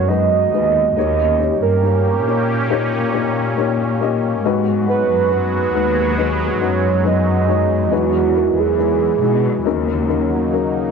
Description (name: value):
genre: pop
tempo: 69 BPM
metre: 4/4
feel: straight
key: G# minor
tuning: A4 = 440 Hz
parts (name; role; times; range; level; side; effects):
- soft octave-layered synth lead; melody; 0.0-10.3 s; F#4 to D#5; -18 LUFS; right 11 dB; chorus, phaser
- dark upright piano; accompaniment; 0.0-10.9 s; G#2 to D#5; -20 LUFS; left 14 dB; none
- sweeping resonant pad; sustained chords; 0.0-10.9 s; C#3 to G4; -24 LUFS; right 1 dB; chorus
- muted studio cello section; bass; 0.0-10.5 s; D#2 to B2; -20 LUFS; left 1 dB; none
room: light reverb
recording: 1960s-style stereo with parts hard left and right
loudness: -15 LUFS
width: side -6 dB against mid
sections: 0.0-10.9 A section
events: none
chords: 0.0 G#m7; 1.0 D#7; 4.4 G#m7; 7.9 Emaj7; 9.7 D#m7